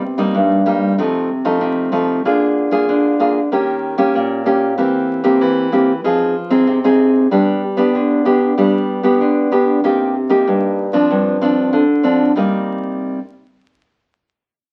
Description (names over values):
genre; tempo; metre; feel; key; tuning
samba; 95 BPM; 4/4; straight; C minor; A4 = 440 Hz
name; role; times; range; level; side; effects
nylon-string guitar; solo; 0.0-13.2 s; G2 to Ab4; -16 LUFS; equal; none
room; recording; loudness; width
moderate studio reverb, RT60 0.8 s; very old 78 rpm record, vinyl crackle; -16 LUFS; mono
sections
0.0-9.8 A section; 9.8-12.4 B section; 12.4-14.7 C section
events
none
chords
0.0 Cm7; 1.0 F7/C; 2.3 Bb7/D; 3.5 Eb7; 4.8 C7/E; 6.0 Fm7; 7.3 G; 9.8 Cm7; 11.1 G7sus4; 12.4 Cm7